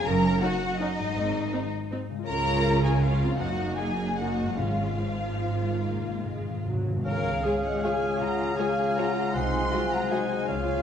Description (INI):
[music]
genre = classical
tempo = 138-177 BPM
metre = 3/4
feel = rubato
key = Db major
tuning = A4 = 437 Hz
[part]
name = warm symphonic violin section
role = melody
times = 0.0-10.8 s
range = Eb5 to C6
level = -33 LUFS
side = left 3 dB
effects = none
[part]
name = rich symphonic violin section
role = second line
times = 0.0-10.2 s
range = Eb4 to Eb5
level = -33 LUFS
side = left 2 dB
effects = none
[part]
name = concert harp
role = arpeggios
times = 0.0-10.8 s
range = Gb2 to Eb5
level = -34 LUFS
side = left 7 dB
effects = none
[part]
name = rich studio cello section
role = bass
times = 0.1-10.8 s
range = Gb2 to Bb4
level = -31 LUFS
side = right 3 dB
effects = none
[part]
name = warm symphonic double bass section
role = bass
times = 0.1-10.8 s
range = Gb1 to Db2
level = -32 LUFS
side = right 3 dB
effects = none
[part]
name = warm symphonic viola section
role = accompaniment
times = 0.4-10.2 s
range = F3 to Gb4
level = -35 LUFS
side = right 2 dB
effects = none
[part]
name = timpani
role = percussion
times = 4.6-7.0 s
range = Ab2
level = -33 LUFS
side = equal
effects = none
[part]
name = warm oboe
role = second line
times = 7.0-10.8 s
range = F5 to Gb5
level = -35 LUFS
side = right 2 dB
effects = none
[part]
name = mellow bassoon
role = accompaniment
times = 7.0-10.8 s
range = C4 to Db4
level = -34 LUFS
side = equal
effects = none
[part]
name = mellow clarinet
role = second line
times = 7.1-10.8 s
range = Ab4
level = -36 LUFS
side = left 4 dB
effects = none
[part]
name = mellow large flute ensemble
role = second line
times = 7.1-10.8 s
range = Db5 to Ab5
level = -32 LUFS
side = left 1 dB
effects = none
[part]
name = dark French horn section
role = sustained chords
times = 7.4-10.3 s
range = Ab3 to Ab4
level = -37 LUFS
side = left 4 dB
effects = none
[sound]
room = wet concert hall reverb, RT60 2.1 s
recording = none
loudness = -24 LUFS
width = side -8 dB against mid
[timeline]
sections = 0.0-7.1 A section; 7.1-10.8 B section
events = timpani fill 5.8-7.1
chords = 0.1 Ebm7/Gb; 1.2 Ab; 2.3 Db; 3.4 Ebm/Gb; 4.6 Db/Ab; 5.8 Ab; 7.1 Db; 9.3 Ab7/C